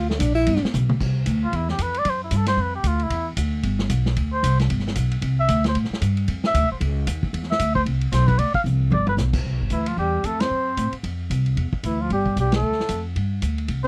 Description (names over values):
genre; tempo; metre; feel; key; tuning
jazz, small-group swing and bop; 227 BPM; 4/4; swing 59% on 8ths; C major; A4 = 441 Hz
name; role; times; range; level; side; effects
breathy tenor saxophone; second line; 0.0-0.7, 9.7-13.9 s; E3 to E4; -28 LUFS; equal; none
upright bass; bass; 0.0-13.9 s; G1 to A2; -24 LUFS; equal; none
vintage drum kit; drums; 0.1-13.8 s; crash cymbal, hi-hat, kick drum, ride cymbal, snare drum, toms; -31 LUFS; equal; none
trumpet with cup mute; melody; 1.4-13.9 s; E4 to F5; -26 LUFS; equal; none
room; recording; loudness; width
little or no reverb; dry, close 1970s-style studio recording; -22 LUFS; mono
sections
1.0-9.4 A section; 9.4-13.9 B section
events
drum fill 0.7, 8.7-9.2; muted trumpet solo 1.0-9.4; band accent 10.4, 12.5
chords
0.5 G; 1.0 C; 2.0 F#m7b5; 2.6 Dm6; 3.1 Em7; 4.2 Amadd11 (rootless); 4.7 G; 5.2 C; 5.7 Gsus2; 6.3 Dm7; 6.8 Dbsus2; 7.3 Cmaj7; 8.4 Csus2; 8.9 G; 9.4 C (rootless); 10.5 F#dim; 11.0 F5; 11.6 Em7; 12.6 Dm; 13.2 G5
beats
0.21 0.47 0.73 | 1.00 1.26 1.52 1.79 | 2.05 2.31 2.58 2.84 | 3.10 3.37 3.63 3.90 | 4.16 4.43 4.69 4.95 | 5.22 5.48 5.75 6.01 | 6.28 6.54 6.80 7.07 | 7.33 7.60 7.86 8.12 | 8.39 8.65 8.92 9.18 | 9.45 9.71 9.98 10.24 | 10.51 10.77 11.04 11.30 | 11.57 11.83 12.10 12.36 | 12.63 12.89 13.15 13.42 | 13.68